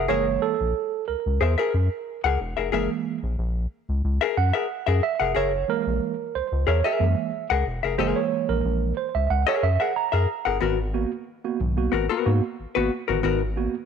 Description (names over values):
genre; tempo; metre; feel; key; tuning
funk; 91 BPM; 4/4; straight; F# mixolydian; A4 = 440 Hz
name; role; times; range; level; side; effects
vintage hollow-body jazz guitar; accompaniment; 0.0-13.4 s; B3 to F#5; -25 LUFS; left 11 dB; none
mellow tine electric piano; stabs; 0.0-13.7 s; G#2 to A#5; -26 LUFS; right 11 dB; fast stereo tremolo, slapback echo
round analog bass; bass; 0.0-13.7 s; E1 to G#2; -24 LUFS; left 1 dB; none
room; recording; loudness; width
light reverb; 1960s-style stereo with parts hard left and right; -22 LUFS; side -7 dB against mid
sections
0.0-10.6 A section; 10.6-13.9 B section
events
tine electric piano solo 0.0-10.6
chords
0.0 F#9; 10.6 G#m9